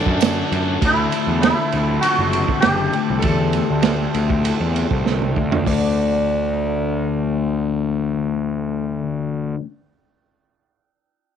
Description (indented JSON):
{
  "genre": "psychedelic rock",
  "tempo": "99 BPM",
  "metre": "4/4",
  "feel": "straight",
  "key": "D mixolydian",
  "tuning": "A4 = 441 Hz",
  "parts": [
    { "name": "sitar", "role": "melody", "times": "0.0-9.5 s", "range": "D4 to D5", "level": "-22 LUFS", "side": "equal", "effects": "low-pass filter, slapback echo" },
    { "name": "overdriven combo organ", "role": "sustained chords", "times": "0.0-8.9 s", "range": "A4 to A5", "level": "-30 LUFS", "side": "right 12 dB", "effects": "low-pass filter" },
    { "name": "thick fuzz guitar", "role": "riff", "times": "0.0-9.6 s", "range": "D3 to E4", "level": "-24 LUFS", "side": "left 12 dB", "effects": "distortion, phaser, low-pass filter" },
    { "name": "fuzz picked electric bass", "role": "bass", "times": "0.1-9.5 s", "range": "F#1 to F#2", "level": "-22 LUFS", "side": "equal", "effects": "overdrive" },
    { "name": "vintage drum kit", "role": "drums", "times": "0.1-5.8 s", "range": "hi-hat, kick drum, ride cymbal, snare drum, toms", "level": "-22 LUFS", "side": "right 6 dB", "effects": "none" }
  ],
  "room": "light reverb, small room reverb",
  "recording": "1960s-style stereo with parts hard left and right, lossy compression artefacts",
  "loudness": "-17 LUFS",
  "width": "side -8 dB against mid",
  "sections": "0.0-5.7 A section; 5.7-8.1 B section",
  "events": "filter sweep 0.0-5.7; drum fill 5.1-5.7",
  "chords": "0.0 D; 0.8 Am; 5.7 D"
}